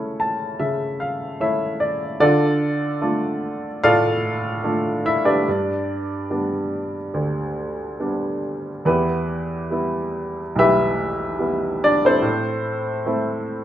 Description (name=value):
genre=classical, lyrical solo piano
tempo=72 BPM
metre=4/4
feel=uneven beats, rubato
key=unclear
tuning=A4 = 441 Hz
part: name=clear upright piano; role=solo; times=0.0-13.6 s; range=B1 to A5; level=-19 LUFS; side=equal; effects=none
room=moderate recital hall reverb, RT60 1.3 s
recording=none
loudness=-19 LUFS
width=side -12 dB against mid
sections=0.0-13.6 A section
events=upright piano fill 0.0-2.2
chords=0.0 A/C#; 2.2 Dm; 5.5 G; 8.9 Em; 12.2 Am